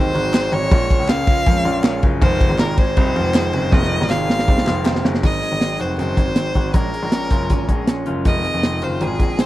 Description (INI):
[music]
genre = jangly indie pop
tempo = 159 BPM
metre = 4/4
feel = straight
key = unclear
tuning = A4 = 440 Hz
[part]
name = clear violin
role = melody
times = 0.0-9.5 s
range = Ab4 to F5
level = -23 LUFS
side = equal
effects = none
[part]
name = fingerpicked plugged-in steel-string acoustic guitar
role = accompaniment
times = 0.0-9.5 s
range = F2 to Eb4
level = -28 LUFS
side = right 4 dB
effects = none
[part]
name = reed electric piano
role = accompaniment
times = 0.0-9.5 s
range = Db4 to C6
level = -29 LUFS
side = right 10 dB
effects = none
[part]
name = electric guitar through a small old amp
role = arpeggios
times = 0.0-9.5 s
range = Eb3 to Gb4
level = -26 LUFS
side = left 5 dB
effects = none
[part]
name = clear grand piano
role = bass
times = 0.0-9.5 s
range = F1 to F2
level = -22 LUFS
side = equal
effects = none
[part]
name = modern studio drum kit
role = drums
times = 0.2-9.5 s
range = crash cymbal, hi-hat, kick drum, ride cymbal, snare drum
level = -17 LUFS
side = equal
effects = none
[part]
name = group handclap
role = percussion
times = 0.3-4.9 s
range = none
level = -33 LUFS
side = left 4 dB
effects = none
[sound]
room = little or no reverb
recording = dry, close 1970s-style studio recording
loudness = -15 LUFS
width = side -15 dB against mid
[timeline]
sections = 0.0-5.2 A section; 5.2-9.5 B section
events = reed electric piano fill 1.5-2.2, 7.5-8.3; drum fill 3.7-5.2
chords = 0.0 Ab7; 0.7 Bbm7; 2.2 Fm7; 6.7 Bbm7; 8.3 Fm7